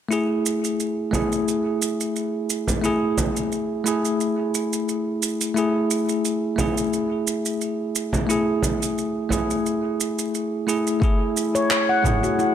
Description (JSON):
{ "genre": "organic downtempo", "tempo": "88 BPM", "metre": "4/4", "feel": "swing 54% on 16ths", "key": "F# minor", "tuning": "A4 = 441 Hz", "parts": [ { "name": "bell-like tine electric piano", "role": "accompaniment", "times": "0.1-12.5 s", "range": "A3 to G#4", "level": "-22 LUFS", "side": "equal", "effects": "auto-pan, sidechain pumping, tape echo" }, { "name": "deep house drum kit", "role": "drums", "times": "0.1-12.5 s", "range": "handclaps, shaker, toms", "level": "-27 LUFS", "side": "right 4 dB", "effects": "overdrive" }, { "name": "frame drum", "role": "percussion", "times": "1.1-12.2 s", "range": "none", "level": "-27 LUFS", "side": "right 1 dB", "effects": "none" }, { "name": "handpan", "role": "arpeggios", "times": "11.0-12.5 s", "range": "E4 to F#5", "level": "-21 LUFS", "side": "left 1 dB", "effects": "vintage 12-bit sampler grit, tape echo" }, { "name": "electronic kick drum", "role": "drums", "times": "11.0-12.2 s", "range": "none", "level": "-21 LUFS", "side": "equal", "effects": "overdrive" } ], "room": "light reverb", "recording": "none", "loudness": "-20 LUFS", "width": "side -9 dB against mid", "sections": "0.1-12.5 A section", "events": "none", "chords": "0.1 F#m7 (rootless)" }